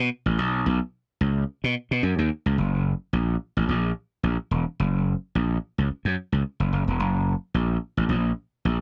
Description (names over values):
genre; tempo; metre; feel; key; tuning
funk; 109 BPM; 4/4; swing 56% on 16ths; F# mixolydian; A4 = 438 Hz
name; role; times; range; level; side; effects
gritty slap bass; solo; 0.0-8.8 s; E1 to B2; -24 LUFS; equal; overdrive
room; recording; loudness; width
little or no reverb; dry, close 1970s-style studio recording; -26 LUFS; mono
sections
0.0-2.6 A section; 2.6-8.8 B section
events
none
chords
none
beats
| 0.39 0.94 1.49 2.04 | 2.60 3.15 3.70 4.25 | 4.80 5.35 5.90 6.45 | 7.00 7.55 8.10 8.64